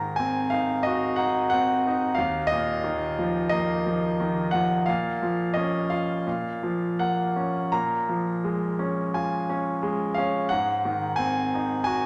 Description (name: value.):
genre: classical, lyrical solo piano.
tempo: 86 BPM.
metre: 4/4.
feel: uneven beats, rubato.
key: Bb minor.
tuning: A4 = 439 Hz.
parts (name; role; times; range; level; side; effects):
bright concert grand piano; solo; 0.0-12.1 s; Eb2 to Bb5; -26 LUFS; equal; none.
room: wet recital hall reverb, RT60 1.7 s.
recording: none.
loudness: -26 LUFS.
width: mono.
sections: 0.0-12.1 A section.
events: none.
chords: 0.0 Ab7; 2.2 Ebsus2; 4.9 Bbm; 7.7 Bbm7; 10.5 Ab7.